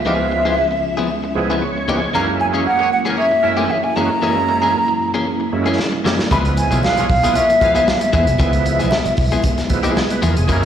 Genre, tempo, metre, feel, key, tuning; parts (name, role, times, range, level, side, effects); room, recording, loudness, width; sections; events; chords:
funk; 115 BPM; 4/4; straight; A4 = 440 Hz
mellow silver concert flute; melody; 0.0-9.7 s; E5 to Cb6; -18 LUFS; equal; slapback echo
string machine, full ensemble; sustained chords; 0.0-10.7 s; Db2 to E5; -25 LUFS; right 1 dB; ensemble chorus
overdriven tonewheel organ; stabs; 0.0-10.7 s; Db2 to Db5; -22 LUFS; right 4 dB; chorus vibrato, slow rotary speaker, slapback echo
clean electric guitar; accompaniment; 0.1-10.7 s; Fb3 to Ab4; -22 LUFS; left 5 dB; spring reverb, slapback echo
clear horn section; second line; 2.1-10.7 s; Fb3 to F5; -24 LUFS; equal; slapback echo
crunchy breakbeat drum kit; drums; 5.8-10.6 s; hi-hat, kick drum, snare drum; -20 LUFS; equal
vintage muted fingered electric bass; bass; 6.3-10.7 s; F1 to E2; -18 LUFS; equal
congas; percussion; 6.3-10.6 s; -29 LUFS; right 4 dB
light reverb, small room ambience; live gig heard through the venue's PA, recital hall reverb; -14 LUFS; side -9 dB against mid
0.0-10.7 A section
tonewheel organ fill 1.1-2.1; drum fill 5.8-6.3
0.0 Db7#9; 2.1 Gb9; 6.3 Db7#9